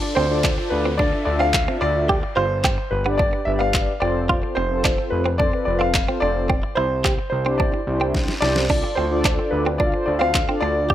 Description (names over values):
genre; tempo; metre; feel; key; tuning
dance-pop; 109 BPM; 4/4; straight; D dorian; A4 = 440 Hz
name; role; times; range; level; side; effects
warm baby grand piano; melody; 0.0-10.9 s; B4 to F5; -24 LUFS; equal; ping-pong delay
mellow synth brass; accompaniment; 0.0-10.9 s; C4 to F5; -25 LUFS; equal; chorus, sidechain pumping
direct-recorded clean electric guitar; riff; 0.0-10.9 s; B3 to G4; -24 LUFS; right 3 dB; analog chorus
downlifter; sound effects; 0.0-4.3 s; none; -37 LUFS; equal; none
fat analog bass; bass; 0.2-10.9 s; F1 to D2; -25 LUFS; equal; sidechain pumping
deep house drum kit; drums; 0.4-10.9 s; crash cymbal, handclaps, kick drum, snare drum; -22 LUFS; equal; none
room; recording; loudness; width
little or no reverb; rough home demo mix; -18 LUFS; side -12 dB against mid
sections
0.0-10.9 A section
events
drum fill 8.1-8.7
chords
0.0 Dm; 2.1 G; 4.0 F; 6.5 Cadd9; 8.7 Dm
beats
0.44 0.99 1.54 | 2.09 2.64 3.19 3.74 | 4.29 4.84 5.39 5.95 | 6.50 7.05 7.60 8.15 | 8.70 9.25 9.80 10.35 | 10.90